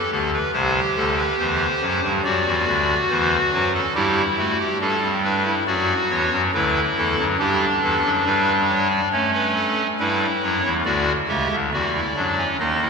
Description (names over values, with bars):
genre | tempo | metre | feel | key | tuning
classical, baroque-style 3-part fugue for pipe organ | 70 BPM | 4/4 | straight | unclear | A4 = 435 Hz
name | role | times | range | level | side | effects
pipe organ, clarinet reed | solo | 0.0-12.9 s | C2 to E5 | -18 LUFS | equal | none
room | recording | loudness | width
wet cathedral reverb, RT60 5.4 s | recorded in a church or concert hall | -18 LUFS | side -5 dB against mid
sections
0.0-12.6 A section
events
none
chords
0.0 G (rootless); 0.5 C; 2.2 D7; 4.0 G; 5.7 D; 7.4 G; 9.1 A7; 10.9 D